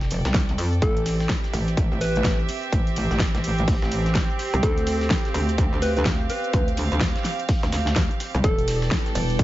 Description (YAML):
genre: bass house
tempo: 126 BPM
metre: 4/4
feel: swing 61% on 16ths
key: unclear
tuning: A4 = 440 Hz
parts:
  - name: metallic wobble bass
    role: bass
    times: 0.0-9.4 s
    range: E1 to F2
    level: -24 LUFS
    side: equal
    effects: distortion, chorus, sidechain pumping
  - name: big-room dance drum kit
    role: drums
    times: 0.0-9.4 s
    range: cabasa, hi-hat, ride cymbal, snare drum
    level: -29 LUFS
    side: equal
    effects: overdrive
  - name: dusty soul sampler-style drum kit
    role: drums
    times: 0.0-9.4 s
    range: hi-hat, snare drum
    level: -36 LUFS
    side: left 1 dB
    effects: high-pass filter on hats, high-pass filter on snare
  - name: bright chamber string section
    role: texture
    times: 0.0-9.4 s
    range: C4 to G5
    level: -30 LUFS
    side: right 3 dB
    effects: sidechain pumping
  - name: electronic kick drum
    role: drums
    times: 0.3-9.4 s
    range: none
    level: -23 LUFS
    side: equal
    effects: overdrive
  - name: soft struck synth lead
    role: melody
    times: 0.8-8.9 s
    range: A4 to B4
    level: -29 LUFS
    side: equal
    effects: chorus, cassette tape, ping-pong delay
  - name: dark analog pad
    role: sustained chords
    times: 8.7-9.4 s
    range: G3 to B4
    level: -31 LUFS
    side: equal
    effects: chorus, phaser, sidechain pumping
room: little or no reverb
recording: nothing above 7.6 kHz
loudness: -20 LUFS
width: side -15 dB against mid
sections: 0.0-9.4 A section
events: none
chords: 0.0 Fadd9; 0.8 Am; 4.6 Dm7; 8.4 Em